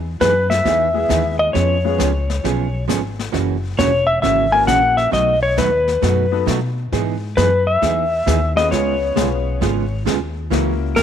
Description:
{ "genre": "country, western swing", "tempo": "134 BPM", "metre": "4/4", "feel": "swing 67% on 8ths", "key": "E major", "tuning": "A4 = 441 Hz", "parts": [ { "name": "upright bass", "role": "bass", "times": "0.0-11.0 s", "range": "E1 to B2", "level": "-22 LUFS", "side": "left 1 dB", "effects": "none" }, { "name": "clean lap steel guitar", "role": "melody", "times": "0.2-11.0 s", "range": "A#4 to G#5", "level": "-17 LUFS", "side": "left 2 dB", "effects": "none" }, { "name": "archtop guitar, miked and amplified", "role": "accompaniment", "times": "0.2-11.0 s", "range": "B2 to G#4", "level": "-23 LUFS", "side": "right 13 dB", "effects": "none" }, { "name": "jazz brush drum kit", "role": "drums", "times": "0.2-11.0 s", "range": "brushed snare drum, hi-hat, kick drum, snare drum", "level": "-26 LUFS", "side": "left 8 dB", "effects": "none" }, { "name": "bright upright piano", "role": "accompaniment", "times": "0.9-11.0 s", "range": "G#3 to B4", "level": "-25 LUFS", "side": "left 13 dB", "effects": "none" } ], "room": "light reverb, small room ambience", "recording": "1960s-style stereo with parts hard left and right", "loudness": "-15 LUFS", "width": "side -9 dB against mid", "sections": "0.0-11.0 A section", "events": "none", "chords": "0.0 Emaj7; 1.5 C#7; 3.3 F#7; 5.1 B7; 6.9 Emaj7; 8.7 C#7; 10.5 F#7/C#" }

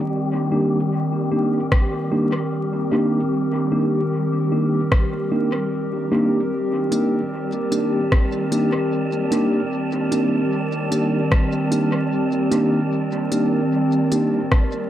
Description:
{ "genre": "ambient dub", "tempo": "75 BPM", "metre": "4/4", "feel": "swing 57% on 16ths", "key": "C dorian", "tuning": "A4 = 438 Hz", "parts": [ { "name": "warbly tape-like pad", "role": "sustained chords", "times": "0.0-14.9 s", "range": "Eb3 to Bb4", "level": "-22 LUFS", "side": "equal", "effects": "chorus, built-in reverb" }, { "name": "wind-like tuned noise texture", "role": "texture", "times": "0.0-14.9 s", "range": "G3 to A5", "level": "-28 LUFS", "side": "equal", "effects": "built-in reverb" }, { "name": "mellow tine electric piano", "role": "stabs", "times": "0.5-14.4 s", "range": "Bb3 to G4", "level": "-23 LUFS", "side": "right 1 dB", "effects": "slow stereo tremolo, dub echo" }, { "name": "electronic kick drum", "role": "drums", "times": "1.7-14.7 s", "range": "none", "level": "-18 LUFS", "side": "equal", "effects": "none" }, { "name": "organic electronic drum kit", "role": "drums", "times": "1.7-14.7 s", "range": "hi-hat, rim click", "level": "-27 LUFS", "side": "left 1 dB", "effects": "dub echo" } ], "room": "moderate spring reverb, RT60 1.6 s, digital ambience", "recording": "echo-heavy mix, vinyl crackle", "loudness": "-18 LUFS", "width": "side -12 dB against mid", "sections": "0.0-14.9 A section", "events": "none", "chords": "0.0 Cm7" }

